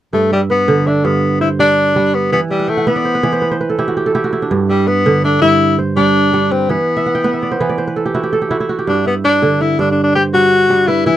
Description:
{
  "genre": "west african traditional",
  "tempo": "110 BPM (dotted quarters)",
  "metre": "12/8",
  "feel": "straight",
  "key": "G major",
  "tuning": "A4 = 439 Hz",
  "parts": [
    { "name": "clear tenor saxophone", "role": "melody", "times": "0.1-11.2 s", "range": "G3 to G4", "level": "-13 LUFS", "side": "left 2 dB", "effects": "none" },
    { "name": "kora", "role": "arpeggios", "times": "0.1-11.2 s", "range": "G2 to G5", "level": "-15 LUFS", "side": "right 3 dB", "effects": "none" }
  ],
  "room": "moderate booth ambience, RT60 0.3 s",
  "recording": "dry, close 1970s-style studio recording",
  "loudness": "-12 LUFS",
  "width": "side -12 dB against mid",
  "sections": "0.1-11.2 A section",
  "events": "kora fill 2.5-4.5, 7.0-8.9",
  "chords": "0.1 G; 2.3 E5; 4.5 G; 6.7 E5; 8.9 G"
}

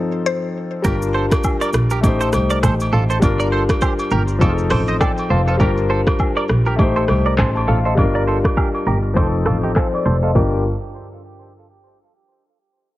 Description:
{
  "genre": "afrobeats",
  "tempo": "101 BPM",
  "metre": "4/4",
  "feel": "swing 58% on 16ths",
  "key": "G minor",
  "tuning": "A4 = 440 Hz",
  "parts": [
    { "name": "mallet-like synth pluck", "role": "melody", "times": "0.0-0.7 s", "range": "C5", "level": "-24 LUFS", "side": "left 5 dB", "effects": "chorus, tape echo" },
    { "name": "warm grand piano", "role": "accompaniment", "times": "0.0-10.6 s", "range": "F3 to C6", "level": "-21 LUFS", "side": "left 3 dB", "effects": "none" },
    { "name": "direct-recorded clean electric guitar", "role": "riff", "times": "0.8-10.6 s", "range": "Eb4 to Eb5", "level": "-24 LUFS", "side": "right 3 dB", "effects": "analog chorus, tape echo" },
    { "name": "clear double bass", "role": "bass", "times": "0.8-10.6 s", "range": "F1 to C2", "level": "-19 LUFS", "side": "equal", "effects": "none" },
    { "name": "deep house drum kit", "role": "drums", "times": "0.8-10.5 s", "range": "crash cymbal, handclaps, hi-hat, kick drum, rim click, shaker", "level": "-19 LUFS", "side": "equal", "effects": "overdrive" },
    { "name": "agogo bells and woodblock", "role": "percussion", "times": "0.9-10.6 s", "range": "none", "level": "-28 LUFS", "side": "right 1 dB", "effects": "none" }
  ],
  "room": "light reverb",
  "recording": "heavily compressed radio sound, multiband compression, low-pass filter",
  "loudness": "-15 LUFS",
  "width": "side -16 dB against mid",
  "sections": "0.8-10.4 A section; 10.4-12.7 B section",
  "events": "break 0.0-0.8; filter sweep 0.8-10.4",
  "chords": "0.0 F7; 0.8 Gm7; 2.0 Am7b5; 3.2 Gm7; 4.4 F7; 5.6 Gm7; 6.8 Am7b5; 8.0 Gm7; 9.2 F7; 10.4 Gm7"
}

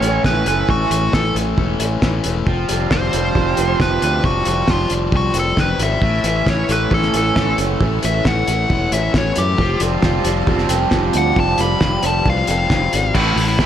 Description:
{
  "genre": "indie rock",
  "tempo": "135 BPM",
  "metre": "4/4",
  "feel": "straight",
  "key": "unclear",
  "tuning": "A4 = 439 Hz",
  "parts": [
    { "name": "nasal lead guitar with a parked wah", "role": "melody", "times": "0.0-13.7 s", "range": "E4 to B5", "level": "-21 LUFS", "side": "left 2 dB", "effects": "overdrive, tape echo" },
    { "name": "biting overdriven guitar", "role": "riff", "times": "0.0-13.7 s", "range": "A2 to C#4", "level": "-23 LUFS", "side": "left 8 dB", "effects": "none" },
    { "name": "overdriven electric guitar", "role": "riff", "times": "0.0-13.7 s", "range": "A2 to F4", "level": "-23 LUFS", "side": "right 10 dB", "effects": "lush chorus, tape echo" },
    { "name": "fingered electric bass", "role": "bass", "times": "0.0-13.7 s", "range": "E1 to F#2", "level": "-21 LUFS", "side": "equal", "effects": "none" },
    { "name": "cloth-damped thuddy drum kit", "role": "drums", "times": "0.0-13.7 s", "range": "crash cymbal, hi-hat, kick drum, snare drum", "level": "-20 LUFS", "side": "equal", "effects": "none" },
    { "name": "phased string machine", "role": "sustained chords", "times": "6.0-13.1 s", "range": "E4 to C#5", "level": "-31 LUFS", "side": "equal", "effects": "none" }
  ],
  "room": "studio reverb",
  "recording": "echo-heavy mix",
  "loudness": "-14 LUFS",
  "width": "side -10 dB against mid",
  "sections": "0.0-13.1 A section",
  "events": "lead electric guitar solo 0.0-13.1",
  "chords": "0.0 A; 2.5 Fsus2; 6.0 A; 9.6 Fsus2; 13.1 A5"
}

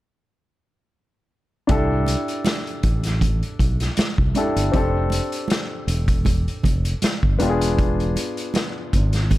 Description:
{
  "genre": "lush 1970s-style soul",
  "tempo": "79 BPM",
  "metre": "4/4",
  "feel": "swing 54% on 16ths",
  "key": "C major",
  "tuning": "A4 = 439 Hz",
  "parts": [
    { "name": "warm grand piano", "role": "accompaniment", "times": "1.7-9.4 s", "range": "B3 to A4", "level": "-25 LUFS", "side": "left 2 dB", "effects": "none" },
    { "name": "fingered electric bass", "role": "bass", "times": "1.7-9.4 s", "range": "E1 to C2", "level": "-22 LUFS", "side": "equal", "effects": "none" },
    { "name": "vintage drum kit", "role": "drums", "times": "1.7-9.4 s", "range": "hi-hat, kick drum, snare drum", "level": "-22 LUFS", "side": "equal", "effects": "none" },
    { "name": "congas", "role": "percussion", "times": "1.7-9.4 s", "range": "none", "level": "-29 LUFS", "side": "right 5 dB", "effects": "none" }
  ],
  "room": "little or no reverb",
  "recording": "none",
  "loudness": "-19 LUFS",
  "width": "side -16 dB against mid",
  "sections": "1.7-9.4 A section",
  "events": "none",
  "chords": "1.7 C69; 4.7 F6; 7.4 E7b9"
}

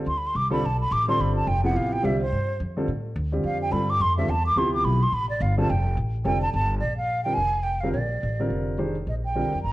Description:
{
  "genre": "modal jazz",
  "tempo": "213 BPM",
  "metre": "4/4",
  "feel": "swing 61% on 8ths",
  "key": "G mixolydian",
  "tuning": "A4 = 443 Hz",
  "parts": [
    { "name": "warm baby grand piano", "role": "accompaniment", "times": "0.0-9.5 s", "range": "C3 to C5", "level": "-28 LUFS", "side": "equal", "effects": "none" },
    { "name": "breathy concert flute", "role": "melody", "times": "0.1-9.7 s", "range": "C5 to D6", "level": "-25 LUFS", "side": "right 1 dB", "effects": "none" },
    { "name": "upright bass", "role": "bass", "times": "0.1-9.7 s", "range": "F1 to A2", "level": "-26 LUFS", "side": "equal", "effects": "none" }
  ],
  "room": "moderate large studio reverb, RT60 1.3 s",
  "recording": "worn, warbling old tape, cassette tape, warbly pitch drift",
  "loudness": "-22 LUFS",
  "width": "side -16 dB against mid",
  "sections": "0.0-6.8 A section; 6.8-9.7 B section",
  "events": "flute solo 0.0-6.8",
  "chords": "0.0 G9sus4; 2.3 Dmadd9; 5.7 F69; 6.8 Bb69; 9.1 Ebadd9"
}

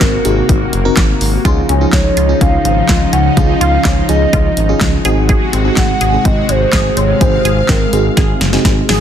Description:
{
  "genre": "synth-pop",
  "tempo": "125 BPM",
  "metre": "4/4",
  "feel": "straight",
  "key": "Db major",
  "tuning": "A4 = 440 Hz",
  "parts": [
    { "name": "hollow clarinet-like synth lead", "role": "melody", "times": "0.0-8.2 s", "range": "Bb4 to Gb5", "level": "-18 LUFS", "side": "right 2 dB", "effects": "chorus, digital delay" },
    { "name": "FM electric piano with auto-pan", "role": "accompaniment", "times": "0.0-9.0 s", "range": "C4 to Bb4", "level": "-19 LUFS", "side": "equal", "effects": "phaser" },
    { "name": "lush unison pad", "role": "sustained chords", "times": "0.0-9.0 s", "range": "C3 to F5", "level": "-18 LUFS", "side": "left 2 dB", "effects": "chorus" },
    { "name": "smooth gliding synth bass", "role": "bass", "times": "0.0-9.0 s", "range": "Gb1 to Db2", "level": "-16 LUFS", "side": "equal", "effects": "none" },
    { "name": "punchy analog drum machine", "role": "drums", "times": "0.0-9.0 s", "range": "handclaps, hi-hat, kick drum, snare drum", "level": "-14 LUFS", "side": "equal", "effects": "none" },
    { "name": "resonant blip pluck", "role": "arpeggios", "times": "1.4-9.0 s", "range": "F3 to Ab4", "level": "-22 LUFS", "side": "equal", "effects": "phaser, digital delay" }
  ],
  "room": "light reverb",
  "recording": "dense, heavily limited modern master",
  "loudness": "-10 LUFS",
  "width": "side -9 dB against mid",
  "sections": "0.0-9.0 A section",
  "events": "drum fill 8.2-9.0",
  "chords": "0.0 Ab7; 1.4 Dbadd9; 5.0 Ab7"
}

